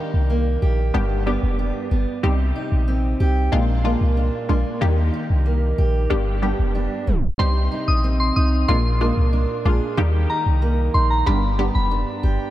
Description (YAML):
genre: dancehall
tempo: 93 BPM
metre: 4/4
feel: straight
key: C minor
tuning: A4 = 440 Hz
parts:
  - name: punchy chord stab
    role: accompaniment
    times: 0.0-11.8 s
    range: G3 to G4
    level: -27 LUFS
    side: left 1 dB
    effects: chorus, phaser
  - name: fingerpicked steel-string acoustic guitar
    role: arpeggios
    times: 0.0-12.5 s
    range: G2 to Ab4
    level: -25 LUFS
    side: right 2 dB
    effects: analog delay
  - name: clean 808-style bass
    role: bass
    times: 0.1-12.4 s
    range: F1 to Eb2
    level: -19 LUFS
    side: equal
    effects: none
  - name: soft synth bell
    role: melody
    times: 7.4-11.9 s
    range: Bb5 to Eb6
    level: -25 LUFS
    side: equal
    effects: chorus, phaser, analog delay
room: light reverb, digital ambience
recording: tape stop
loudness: -18 LUFS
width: side -14 dB against mid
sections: 0.0-7.4 A section; 7.4-12.5 B section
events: tape stop 7.1-7.4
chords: 0.0 Eb; 0.9 G; 2.2 Cm; 3.5 Bb7; 4.8 Eb; 6.1 G; 7.4 Cm; 8.7 Bb7; 10.0 Eb; 11.3 G